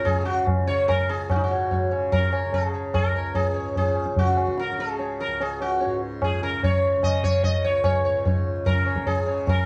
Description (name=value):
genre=indian classical, Hindustani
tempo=147 BPM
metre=4/4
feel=straight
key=unclear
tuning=A4 = 440 Hz
part: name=sitar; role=melody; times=0.0-9.7 s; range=Eb4 to Eb5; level=-26 LUFS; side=equal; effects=none
part: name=tanpura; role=drone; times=0.0-9.7 s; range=Db2 to Db3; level=-35 LUFS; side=equal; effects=none
part: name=tabla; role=percussion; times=0.1-9.6 s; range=none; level=-26 LUFS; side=equal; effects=none
room=light reverb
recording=vinyl crackle, small room ambience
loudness=-23 LUFS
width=mono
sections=0.0-1.3 A section; 1.3-9.7 B section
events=none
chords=none